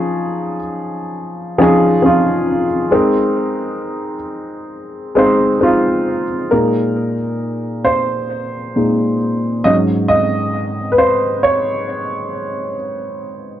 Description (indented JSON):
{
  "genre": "hip hop",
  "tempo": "67 BPM",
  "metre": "4/4",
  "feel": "swing 57% on 16ths",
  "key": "Bb minor",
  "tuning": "A4 = 440 Hz",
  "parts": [
    { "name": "dark upright piano", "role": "solo", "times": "0.0-13.6 s", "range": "Ab2 to Eb5", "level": "-14 LUFS", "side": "equal", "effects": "low-pass filter, analog delay" }
  ],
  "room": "wet small room reverb, RT60 0.5 s",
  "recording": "none",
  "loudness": "-14 LUFS",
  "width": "side -11 dB against mid",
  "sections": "0.0-6.5 A section; 6.5-13.6 A section",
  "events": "upright piano solo 6.5-13.6",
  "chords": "0.0 Eb9sus4; 2.9 Bb9sus4; 9.6 Ab7sus4"
}